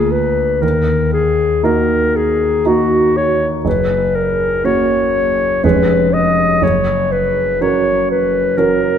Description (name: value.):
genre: classical, romantic duo for clarinet and grand piano.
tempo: 60 BPM.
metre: 3/4.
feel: rubato.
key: unclear.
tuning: A4 = 440 Hz.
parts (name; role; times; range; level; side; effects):
clear clarinet; melody; 0.0-9.0 s; Gb4 to Eb5; -15 LUFS; left 2 dB; none.
warm concert grand piano; accompaniment; 0.0-9.0 s; F1 to Bb4; -16 LUFS; right 2 dB; none.
room: moderate scoring stage reverb, RT60 1.9 s.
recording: none.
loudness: -12 LUFS.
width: side -8 dB against mid.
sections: 0.0-9.0 A section.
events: none.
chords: 0.0 Bb7/D; 0.6 Ebm; 3.7 Gb; 5.6 Db7/F; 6.6 Gb.